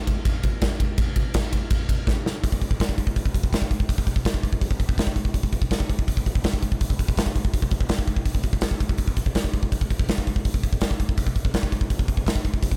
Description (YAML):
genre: metal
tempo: 165 BPM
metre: 4/4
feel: straight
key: none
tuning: none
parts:
  - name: big rock drum kit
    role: drums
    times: 0.1-12.8 s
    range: hi-hat, kick drum, ride cymbal, snare drum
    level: -24 LUFS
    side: equal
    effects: none
room: little or no reverb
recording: none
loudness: -24 LUFS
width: mono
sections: 0.0-2.4 A section; 2.4-12.8 B section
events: drum fill 2.1-2.4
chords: none